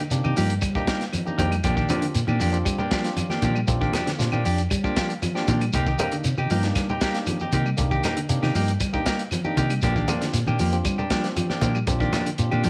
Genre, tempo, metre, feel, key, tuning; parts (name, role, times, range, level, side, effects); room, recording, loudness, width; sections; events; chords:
afrobeat; 117 BPM; 4/4; straight; A4 = 441 Hz
semi-hollow electric guitar; arpeggios; 0.0-12.7 s; D3 to G3; -32 LUFS; equal; subtle chorus
clean electric guitar; stabs; 0.0-12.7 s; F3 to G4; -30 LUFS; equal
barky tine electric piano; accompaniment; 0.1-12.7 s; Bb3 to G5; -35 LUFS; equal; overdrive
hollow-body short-scale fingered electric bass; bass; 0.1-12.7 s; Bb1 to C3; -26 LUFS; equal
crunchy breakbeat drum kit; drums; 0.1-12.7 s; hi-hat, kick drum, snare drum; -32 LUFS; equal
congas; percussion; 0.1-12.7 s; -34 LUFS; equal
shekere; percussion; 0.1-12.7 s; -36 LUFS; equal
claves; percussion; 0.2-12.6 s; -41 LUFS; equal
light reverb, small room ambience; -24 LUFS; mono
0.0-12.7 A section
tine electric piano fill 12.4-12.7
0.0 Cm7; 1.6 Bb6; 5.7 Cm7; 9.8 Bb6